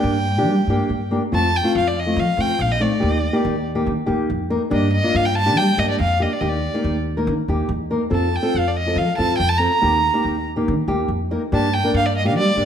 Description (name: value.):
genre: klezmer.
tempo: 141 BPM.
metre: 4/4.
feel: straight.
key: unclear.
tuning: A4 = 440 Hz.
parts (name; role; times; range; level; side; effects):
rich violin; melody; 0.0-12.7 s; D5 to Bb5; -21 LUFS; right 1 dB; none.
nylon-string guitar; accompaniment; 0.0-12.7 s; A3 to Bb4; -21 LUFS; left 1 dB; none.
upright bass; bass; 0.0-12.7 s; Bb1 to G3; -22 LUFS; equal; none.
room: moderate recital hall reverb, RT60 1.4 s.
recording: none.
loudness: -17 LUFS.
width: side -8 dB against mid.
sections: 0.0-1.3 A section; 1.3-12.7 A section.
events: none.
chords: 0.0 Gm; 1.3 F; 3.0 Eb; 4.7 Gm; 6.4 Eb; 8.1 F; 9.8 Eb; 11.5 Gm.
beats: 0.05 0.47 0.90 | 1.32 1.75 2.17 2.60 | 3.02 3.45 3.87 4.30 | 4.72 5.15 5.57 6.00 | 6.42 6.84 7.27 7.70 | 8.12 8.54 8.97 9.39 | 9.82 10.24 10.67 11.09 | 11.52 11.94 12.37.